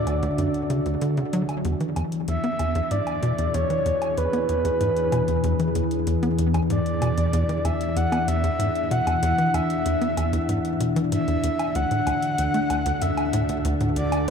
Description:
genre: ambient, sequencer-driven space music.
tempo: 95 BPM.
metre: 4/4.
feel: straight.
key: unclear.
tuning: A4 = 440 Hz.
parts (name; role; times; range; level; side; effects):
breathy flute-like synth lead; melody; 0.0-14.3 s; B4 to F#5; -26 LUFS; equal; chorus, analog delay.
lush unison pad; sustained chords; 0.0-14.3 s; D3 to E5; -26 LUFS; left 1 dB; chorus.
tight sequencer bass; riff; 0.0-14.3 s; D2 to B3; -26 LUFS; equal; cassette tape, analog delay.
analog drone; bass; 0.0-14.3 s; D2 to E2; -32 LUFS; equal; chorus.
electronic hi-hat and woodblock; percussion; 0.1-14.3 s; none; -35 LUFS; equal; none.
room: wet cathedral reverb, RT60 5.5 s.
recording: in a vast, echoing space.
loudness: -21 LUFS.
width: side -6 dB against mid.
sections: 0.0-14.3 A section.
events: fade-in on drum 0.0-14.3.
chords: 0.0 Dadd9; 1.6 E7; 11.8 Dadd9.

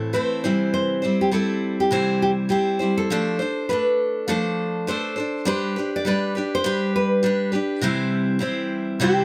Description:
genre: acoustic pop.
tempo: 102 BPM.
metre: 4/4.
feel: swing 60% on 16ths.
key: C major.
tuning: A4 = 440 Hz.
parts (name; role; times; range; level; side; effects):
nylon-string guitar; melody; 0.0-9.2 s; E4 to D5; -26 LUFS; equal; none.
picked steel-string acoustic guitar; accompaniment; 0.0-9.2 s; A2 to C5; -24 LUFS; equal; none.
room: moderate studio ambience, RT60 0.5 s.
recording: none.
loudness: -23 LUFS.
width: mono.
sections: 0.0-7.8 A section; 7.8-9.2 B section.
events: none.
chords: 0.4 C; 3.1 F6; 5.5 G; 7.8 C.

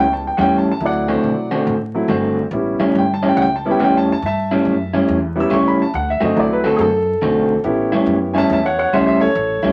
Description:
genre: blues.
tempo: 140 BPM.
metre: 4/4.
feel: swing 66% on 8ths.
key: A mixolydian.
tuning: A4 = 440 Hz.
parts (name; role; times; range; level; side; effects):
warm concert grand piano; accompaniment; 0.0-9.7 s; F#3 to E6; -20 LUFS; equal; none.
electric guitar through a small old amp; riff; 0.0-9.7 s; A2 to F#4; -19 LUFS; equal; none.
upright bass; bass; 0.0-9.7 s; G1 to B2; -29 LUFS; equal; none.
room: wet studio reverb, RT60 0.6 s.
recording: vinyl crackle, nothing above 10.4 kHz.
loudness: -17 LUFS.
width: mono.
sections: 0.0-9.7 A section.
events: none.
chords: 0.0 A7; 0.8 D7; 2.5 A7; 5.9 D7; 7.6 A7.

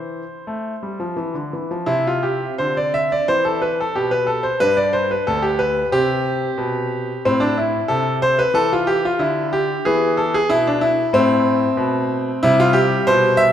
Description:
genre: classical, baroque-style suite movement for grand piano.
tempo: 91 BPM.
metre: 4/4.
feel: rubato.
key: C major.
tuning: A4 = 440 Hz.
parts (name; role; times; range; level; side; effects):
bright concert grand piano; solo; 0.0-13.5 s; D2 to E5; -16 LUFS; equal; none.
room: moderate concert hall reverb, RT60 2.3 s.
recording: recorded in a church or concert hall.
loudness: -16 LUFS.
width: side -10 dB against mid.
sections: 0.0-1.9 A section; 1.9-13.5 B section.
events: none.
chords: 0.0 C; 4.6 G5; 5.9 C5; 7.2 Am; 9.8 E5; 11.1 Am; 12.4 C5.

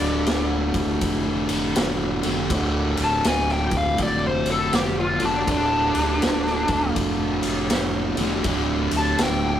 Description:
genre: blues rock power trio and southern rock.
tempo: 81 BPM.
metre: 4/4.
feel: swing 63% on 8ths.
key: D minor.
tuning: A4 = 439 Hz.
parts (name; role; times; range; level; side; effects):
biting lead guitar; melody; 0.0-9.6 s; D4 to A5; -24 LUFS; left 2 dB; wah, overdrive, digital delay.
fuzz guitar; riff; 0.0-9.6 s; D2 to D3; -23 LUFS; equal; distortion.
fingered electric bass; bass; 0.0-9.6 s; D1 to F1; -29 LUFS; equal; none.
raw garage drum kit; drums; 0.0-9.4 s; kick drum, ride cymbal, snare drum; -26 LUFS; equal; none.
room: moderate small room reverb, RT60 0.5 s.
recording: rough rehearsal-room recording, tube saturation.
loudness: -20 LUFS.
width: side -10 dB against mid.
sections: 0.0-9.6 A section.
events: lead electric guitar solo 0.0-9.6.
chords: 0.0 Dm.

